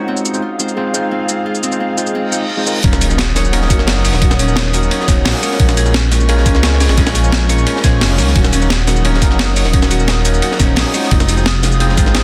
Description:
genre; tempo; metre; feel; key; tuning
liquid drum and bass; 174 BPM; 4/4; straight; Eb dorian; A4 = 440 Hz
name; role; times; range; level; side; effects
overdriven tine electric piano; accompaniment; 0.0-12.2 s; Gb3 to C5; -22 LUFS; equal; tape echo
airy breathy pad; sustained chords; 0.0-12.2 s; Eb4 to Eb6; -26 LUFS; equal; chorus, sidechain pumping
Celtic harp; arpeggios; 0.0-12.2 s; C4 to Db5; -26 LUFS; equal; dub echo
breakbeat sampler-style drum kit; drums; 0.2-12.2 s; hi-hat, shaker, snare drum; -21 LUFS; equal; none
reverse cymbal and impact; sound effects; 2.3-4.2 s; none; -26 LUFS; equal; none
dark detuned saw bass; bass; 2.8-12.2 s; Eb1 to Db2; -17 LUFS; equal; tube saturation
crunchy breakbeat drum kit; drums; 2.8-12.2 s; hi-hat, ride cymbal, snare drum; -25 LUFS; equal; high-pass filter on cymbals, high-pass filter on hats, high-pass filter on snare, high-pass filter on room
electronic kick drum; drums; 2.8-12.0 s; none; -16 LUFS; equal; overdrive
room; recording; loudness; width
small room ambience; dense, heavily limited modern master; -14 LUFS; mono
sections
0.0-2.8 A section; 2.8-12.2 B section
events
reverse cymbal 2.3-2.8; drop 2.8-12.2; impact 2.8-4.2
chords
0.1 Fm7; 2.8 Ebm7; 5.6 Bbm7; 8.4 Ebm7; 11.1 Fm7

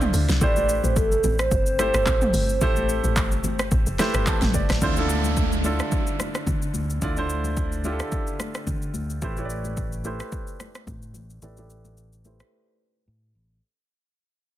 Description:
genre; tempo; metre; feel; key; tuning
amapiano; 109 BPM; 4/4; swing 55% on 16ths; D minor; A4 = 441 Hz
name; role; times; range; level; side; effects
hollow clarinet-like synth lead; melody; 0.0-4.2 s; A4 to D5; -25 LUFS; right 2 dB; chorus, digital delay
clear baby grand piano; accompaniment; 0.0-13.6 s; D3 to A5; -29 LUFS; right 2 dB; low-pass filter
woody log drum bass; bass; 0.0-4.8 s; F1 to D2; -24 LUFS; equal; none
deep house drum kit; drums; 0.0-12.5 s; handclaps, hi-hat, kick drum, rim click, shaker, snare drum, toms; -26 LUFS; equal; overdrive
congas; percussion; 0.1-12.4 s; none; -34 LUFS; left 4 dB; none
fingered electric bass; bass; 4.8-13.6 s; A1 to D3; -29 LUFS; equal; none
downlifter; sound effects; 4.8-9.2 s; none; -31 LUFS; right 4 dB; none
room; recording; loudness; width
light reverb; dense, heavily limited modern master; -21 LUFS; side -13 dB against mid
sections
0.0-4.8 A section; 4.8-13.6 B section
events
drop 0.0-4.8; grand piano fill 4.0-4.8; fade-out 4.8-13.6; filter sweep on grand piano 4.8-13.6; break 12.5-13.6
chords
0.4 Am9; 4.8 Dm9; 9.2 Am9

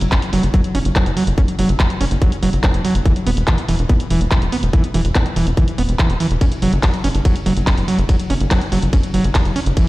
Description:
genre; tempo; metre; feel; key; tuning
psychedelic trance; 143 BPM; 4/4; straight; unclear; A4 = 442 Hz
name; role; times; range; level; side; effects
tight sequencer bass; bass; 0.0-9.7 s; E1 to F#1; -18 LUFS; equal; none
drum and bass drum kit; drums; 0.0-9.9 s; handclaps, hi-hat, ride cymbal; -25 LUFS; equal; none
overdriven acid bass; riff; 0.1-9.9 s; E3 to C#4; -20 LUFS; right 1 dB; distortion, auto-pan, sidechain pumping, ping-pong delay
electronic kick drum; drums; 0.1-9.9 s; none; -14 LUFS; equal; none
room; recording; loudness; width
light reverb; played on a big sound system in a bare room, large studio reverb; -14 LUFS; side -18 dB against mid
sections
0.0-9.9 A section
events
none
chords
0.0 F#5; 3.1 E5; 6.4 F#5

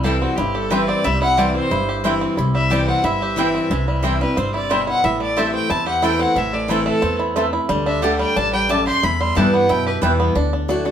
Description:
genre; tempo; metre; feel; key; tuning
bluegrass; 180 BPM; 4/4; straight; unclear; A4 = 440 Hz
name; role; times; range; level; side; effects
clear fiddle; melody; 0.0-10.0 s; F#4 to C6; -22 LUFS; equal; none
picked steel-string acoustic guitar; accompaniment; 0.0-10.9 s; E2 to G4; -22 LUFS; left 2 dB; none
bluegrass banjo; arpeggios; 0.0-10.9 s; E3 to G4; -23 LUFS; right 2 dB; none
upright bass; bass; 0.0-10.9 s; G1 to G2; -24 LUFS; equal; none
mandolin; stabs; 0.1-10.1 s; A3 to A5; -23 LUFS; right 2 dB; none
room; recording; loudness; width
moderate studio reverb, RT60 0.6 s; band playing live in one room; -16 LUFS; side -9 dB against mid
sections
0.0-10.4 A section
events
none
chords
0.0 C; 5.0 Am; 7.7 Dsus4; 9.0 Em; 10.4 Dadd9

